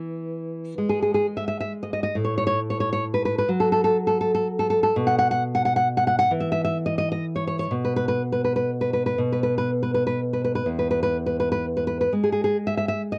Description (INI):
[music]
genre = romantic piece for solo classical guitar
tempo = 40-46 BPM (dotted quarters)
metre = 6/8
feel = rubato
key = E major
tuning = A4 = 438 Hz
[part]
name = nylon-string guitar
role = solo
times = 0.0-13.2 s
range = E2 to F#5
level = -24 LUFS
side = equal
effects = none
[sound]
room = light reverb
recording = dry, close 1970s-style studio recording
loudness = -24 LUFS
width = mono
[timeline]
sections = 0.0-13.2 A section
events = none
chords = 0.0 E; 2.2 F#m/A; 5.0 N.C.; 10.7 E